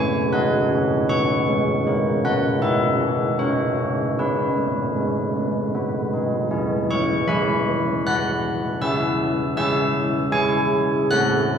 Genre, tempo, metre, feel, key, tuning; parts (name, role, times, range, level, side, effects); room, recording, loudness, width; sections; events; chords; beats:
classical, tune for church bells; 78 BPM; 3/4; straight; E major; A4 = 440 Hz
old church bells; solo; 0.0-11.6 s; E3 to F#6; -19 LUFS; equal
wet scoring stage reverb, RT60 2.0 s; heard from further back in the room, studio reverb; -19 LUFS; side -7 dB against mid
0.0-6.5 A section; 6.5-11.6 B section
0.0 F#m; 1.9 A#dim; 4.2 G#m; 5.8 B; 6.5 E; 8.8 C#m
0.33 1.10 | 1.86 2.62 3.39 | 4.17 4.96 5.75 | 6.53 7.30 8.08 | 8.83 9.58 10.33 | 11.11